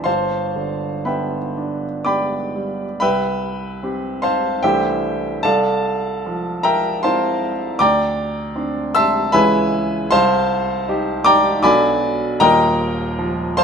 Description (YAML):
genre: classical, impressionist solo piano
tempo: 58-80 BPM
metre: 3/4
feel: rubato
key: G mixolydian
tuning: A4 = 440 Hz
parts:
  - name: clear baby grand piano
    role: solo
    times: 0.0-13.6 s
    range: Eb1 to E6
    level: -16 LUFS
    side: equal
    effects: none
room: moderate stone room reverb, RT60 1.2 s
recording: none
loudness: -16 LUFS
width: side -6 dB against mid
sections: 0.0-3.0 A section; 3.0-13.6 B section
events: none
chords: 0.1 Gadd9; 3.0 Cmaj7; 4.6 Am7/C; 5.4 Fmaj7/C; 7.8 D5; 9.4 Dbm7; 10.1 Cm7; 11.7 Bm7; 12.4 Ebadd9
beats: | 0.06 1.08 2.06 | 3.01 3.84 4.63 | 5.43 6.25 7.04 | 7.81 8.58 9.36 | 10.13 10.89 11.65 | 12.41 13.20